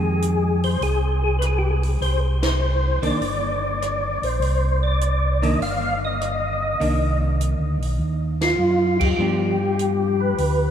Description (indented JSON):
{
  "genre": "soul jazz organ trio",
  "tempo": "100 BPM",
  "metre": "4/4",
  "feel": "swing 69% on 8ths",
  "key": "C minor",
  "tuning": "A4 = 440 Hz",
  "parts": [
    { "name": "percussive tonewheel organ", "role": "melody", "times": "0.0-10.7 s", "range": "F4 to F5", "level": "-23 LUFS", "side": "equal", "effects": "slow rotary speaker, chorus vibrato" },
    { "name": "archtop guitar, miked and amplified", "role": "accompaniment", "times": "0.0-9.6 s", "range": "Eb3 to D4", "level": "-30 LUFS", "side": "right 2 dB", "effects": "none" },
    { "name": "mellow tonewheel organ", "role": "bass", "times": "0.0-10.7 s", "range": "G1 to G2", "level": "-22 LUFS", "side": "equal", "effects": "chorus vibrato, slow rotary speaker" },
    { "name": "compact cocktail drum kit", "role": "drums", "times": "0.2-10.6 s", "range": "crash cymbal, hi-hat, kick drum, ride cymbal, rim click, snare drum", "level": "-31 LUFS", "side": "right 1 dB", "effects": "none" }
  ],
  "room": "wet cathedral reverb, RT60 5.3 s",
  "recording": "in a vast, echoing space",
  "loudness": "-19 LUFS",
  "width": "side -9 dB against mid",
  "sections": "0.0-10.7 A section",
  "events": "band accent 2.3, 8.3; drum fill 8.0-8.6",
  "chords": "0.0 Fm7; 2.0 Cm9; 9.2 G7"
}